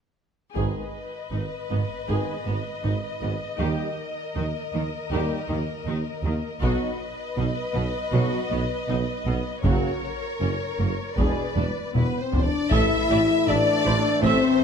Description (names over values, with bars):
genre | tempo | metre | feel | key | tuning
cinematic, epic orchestral film score | 79 BPM | 4/4 | straight | unclear | A4 = 439 Hz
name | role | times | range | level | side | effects
rich symphonic viola section | accompaniment | 0.5-14.6 s | A#3 to E5 | -31 LUFS | right 1 dB | none
warm French horn section | sustained chords | 0.5-14.6 s | A#3 to E4 | -25 LUFS | left 5 dB | none
warm symphonic violin section | melody | 0.6-14.6 s | B4 to E5 | -33 LUFS | left 4 dB | none
rich symphonic violin section | second line | 0.6-14.6 s | A#4 to E5 | -32 LUFS | left 2 dB | none
warm trombone section | sustained chords | 0.6-14.6 s | B2 to A3 | -33 LUFS | right 4 dB | none
mellow tuba | bass | 0.6-14.6 s | E1 to D#2 | -31 LUFS | right 4 dB | none
rich symphonic cello section | bass | 0.6-14.6 s | E2 to D#3 | -30 LUFS | right 2 dB | none
rich symphonic double bass section | bass | 0.6-14.3 s | E1 to D#2 | -31 LUFS | right 3 dB | none
taiko ensemble | drums | 0.6-14.6 s | none | -27 LUFS | left 1 dB | none
room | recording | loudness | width
moderate scoring stage reverb, RT60 1.6 s | close, detailed microphones | -22 LUFS | side -7 dB against mid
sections
0.6-12.7 A section; 12.7-14.6 B section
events
break 0.0-0.6; drum fill 0.0-0.6, 11.6-12.7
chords
0.0 N.C.; 0.6 G#m; 3.6 D#; 6.6 B; 9.6 F#; 11.2 E7; 12.7 Am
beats
| 0.56 1.32 2.08 2.84 | 3.59 4.36 5.11 5.87 | 6.62 7.37 8.13 8.88 | 9.64 10.40 11.17 11.95 | 12.72 13.48 14.24